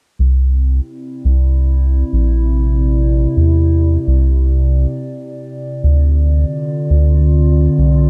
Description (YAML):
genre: folktronica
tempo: 85 BPM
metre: 4/4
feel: straight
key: unclear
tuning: A4 = 439 Hz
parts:
  - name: warbly tape-like pad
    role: sustained chords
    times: 0.6-8.1 s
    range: C3 to D5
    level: -21 LUFS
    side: equal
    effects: chorus, built-in reverb
  - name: round analog bass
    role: bass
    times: 0.2-8.1 s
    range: Bb1 to E2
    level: -14 LUFS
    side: equal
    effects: none
room: light reverb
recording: none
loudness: -14 LUFS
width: mono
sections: 0.2-8.1 A section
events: filter sweep on analog synth bass 0.2-8.1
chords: 0.2 Cadd9; 5.8 Dm7